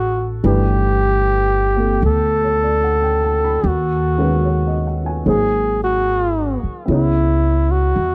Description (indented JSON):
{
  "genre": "jazz ballad",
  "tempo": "74 BPM",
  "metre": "4/4",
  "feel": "swing 68% on 8ths",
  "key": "unclear",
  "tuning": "A4 = 440 Hz",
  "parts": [
    { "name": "warm flugelhorn", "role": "melody", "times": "0.0-8.1 s", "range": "E4 to A4", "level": "-21 LUFS", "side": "equal", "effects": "tape echo" },
    { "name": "warm upright piano", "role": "accompaniment", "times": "0.0-8.1 s", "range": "D#3 to B5", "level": "-25 LUFS", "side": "equal", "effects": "none" },
    { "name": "upright bass", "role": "bass", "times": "0.0-8.1 s", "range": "G1 to E2", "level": "-21 LUFS", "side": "equal", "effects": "none" }
  ],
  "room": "little or no reverb",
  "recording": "dry, close 1970s-style studio recording",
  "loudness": "-17 LUFS",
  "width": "mono",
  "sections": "0.0-8.1 A section",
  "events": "none",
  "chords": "0.4 Gadd9; 3.6 B69/D#; 5.3 G#7; 6.9 C#m7"
}